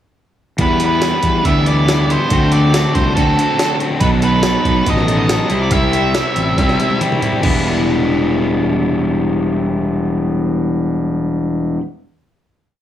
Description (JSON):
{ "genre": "indie rock", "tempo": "140 BPM", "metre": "4/4", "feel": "straight", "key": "E minor", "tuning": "A4 = 439 Hz", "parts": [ { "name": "octave-fuzz lead guitar", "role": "melody", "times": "0.6-7.0 s", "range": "A4 to E5", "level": "-19 LUFS", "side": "right 3 dB", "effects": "distortion, slapback echo" }, { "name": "crunchy overdriven guitar", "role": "riff", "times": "0.6-11.8 s", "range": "B2 to A4", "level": "-17 LUFS", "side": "left 4 dB", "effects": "none" }, { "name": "fuzz fingered electric bass", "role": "bass", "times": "0.6-11.8 s", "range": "E1 to E2", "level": "-17 LUFS", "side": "right 2 dB", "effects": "overdrive" }, { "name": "jungle sampler-style drum kit", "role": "drums", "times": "0.6-7.5 s", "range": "crash cymbal, hi-hat, kick drum, snare drum, tambourine, toms", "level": "-19 LUFS", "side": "right 1 dB", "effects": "none" } ], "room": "light reverb", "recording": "studio reverb", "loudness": "-13 LUFS", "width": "side -11 dB against mid", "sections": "0.6-7.4 interlude; 7.4-10.9 final chord", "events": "drum fill 6.6-7.4", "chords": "0.6 Em7; 2.3 D5; 4.0 B7; 5.5 C; 7.4 Em" }